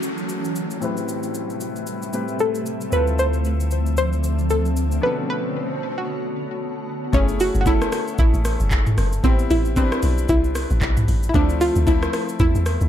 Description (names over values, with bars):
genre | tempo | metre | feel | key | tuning
amapiano | 114 BPM | 4/4 | swing 58% on 16ths | F# minor | A4 = 442 Hz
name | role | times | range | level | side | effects
analog pluck | melody | 0.0-12.9 s | C4 to C#5 | -23 LUFS | equal | chorus, low-pass filter, ping-pong delay
bright baby grand piano | accompaniment | 0.0-12.9 s | A2 to B4 | -28 LUFS | left 5 dB | low-pass filter
granular cloud pad | sustained chords | 0.0-7.1 s | C3 to E5 | -28 LUFS | equal | built-in reverb, low-pass filter
afro-pop drum kit | drums | 0.0-12.9 s | handclaps, hi-hat, kick drum, rim click, shaker, toms | -22 LUFS | equal | none
downlifter and swell | sound effects | 0.0-6.1 s | none | -36 LUFS | right 1 dB | none
punchy sub bass | bass | 2.9-5.0 s | D2 | -20 LUFS | equal | none
deep log drum bass | bass | 7.1-12.9 s | F#1 to E2 | -21 LUFS | equal | none
room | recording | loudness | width
digital ambience | dark, warm production | -18 LUFS | side -10 dB against mid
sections
0.0-7.1 A section; 7.1-12.9 B section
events
filter sweep 0.0-7.1; swell 3.8-7.1; break 5.0-7.1; drop 7.1-12.9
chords
0.0 F#m9; 0.8 Am9; 2.9 Dm9; 5.0 Bm9; 7.1 F#m9; 9.2 Am9; 11.3 Dm9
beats
0.29 | 0.82 1.34 1.87 2.40 | 2.92 3.45 3.98 4.50 | 5.03 5.55 6.08 6.61 | 7.13 7.66 8.19 8.71 | 9.24 9.77 10.29 10.82 | 11.34 11.87 12.40